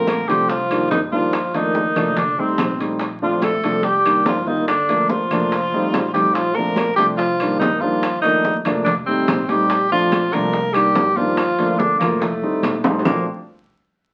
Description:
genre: Afro-Cuban jazz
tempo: 143 BPM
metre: 4/4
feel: straight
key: Bb major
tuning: A4 = 440 Hz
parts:
  - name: clear tenor saxophone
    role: melody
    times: 0.0-13.2 s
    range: A3 to Bb4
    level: -22 LUFS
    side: equal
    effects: none
  - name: breathy trombone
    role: second line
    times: 0.0-13.2 s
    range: A2 to Bb3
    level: -28 LUFS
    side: equal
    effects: none
  - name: warm baby grand piano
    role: accompaniment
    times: 0.0-13.3 s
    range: D3 to F4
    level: -24 LUFS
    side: equal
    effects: none
  - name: upright bass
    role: bass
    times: 0.0-13.2 s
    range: F1 to C2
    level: -37 LUFS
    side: equal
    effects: none
  - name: bongos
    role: percussion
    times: 0.1-13.2 s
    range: none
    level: -28 LUFS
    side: equal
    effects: none
  - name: claves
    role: percussion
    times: 0.1-13.2 s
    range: none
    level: -38 LUFS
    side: equal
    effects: none
  - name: congas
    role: percussion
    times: 0.1-13.2 s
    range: none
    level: -30 LUFS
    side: equal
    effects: none
  - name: timbales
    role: percussion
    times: 0.1-13.2 s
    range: none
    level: -32 LUFS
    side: equal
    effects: none
room: wet studio reverb, RT60 0.6 s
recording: very old 78 rpm record, vinyl crackle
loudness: -19 LUFS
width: mono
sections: 0.0-13.1 A section; 13.1-14.1 B section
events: drum fill 5.9-6.4, 12.6-13.1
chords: 0.0 Bbmaj7; 0.5 Cm7; 1.3 Gm9; 2.2 F7; 3.0 Bbmaj7; 3.8 Cm7; 4.7 Gm9; 5.5 F7; 6.4 Bbmaj7; 7.2 Cm7; 8.0 Gm9; 8.9 F7; 9.7 Bbmaj7; 10.5 Cm7; 11.4 Gm9; 12.2 F7; 13.1 Bbmaj7

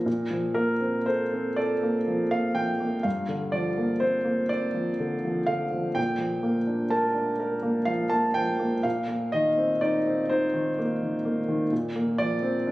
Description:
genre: classical, impressionist solo piano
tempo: 41 BPM (dotted quarters)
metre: 6/8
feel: rubato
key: Bb major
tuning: A4 = 440 Hz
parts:
  - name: clear grand piano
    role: solo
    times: 0.0-12.7 s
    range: G2 to A5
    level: -24 LUFS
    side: equal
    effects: none
room: moderate recital hall reverb, RT60 1.8 s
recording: recorded on a phone in the room, studio ambience, compression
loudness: -24 LUFS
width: side -17 dB against mid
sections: 0.1-12.7 A section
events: none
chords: 0.1 Bbsus2; 3.0 Gm7; 6.0 Bb6; 8.8 Cm7/Bb; 11.7 Bbadd9

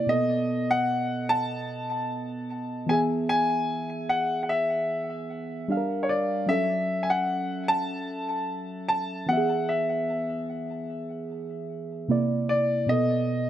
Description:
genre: R&B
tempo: 75 BPM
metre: 4/4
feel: swing 54% on 16ths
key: unclear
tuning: A4 = 440 Hz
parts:
  - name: clear grand piano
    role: melody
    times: 0.0-13.5 s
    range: C#5 to A5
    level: -26 LUFS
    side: left 1 dB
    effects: ping-pong delay
  - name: muted felt-like synth keys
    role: accompaniment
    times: 0.0-13.5 s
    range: B2 to F5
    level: -28 LUFS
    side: right 2 dB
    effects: chorus
room: light reverb, studio reverb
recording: none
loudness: -24 LUFS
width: side -11 dB against mid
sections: 0.0-13.5 A section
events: none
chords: 0.1 B7; 2.9 E; 5.7 Gm7; 6.5 F#m7; 9.3 E; 12.1 C9; 12.9 B7

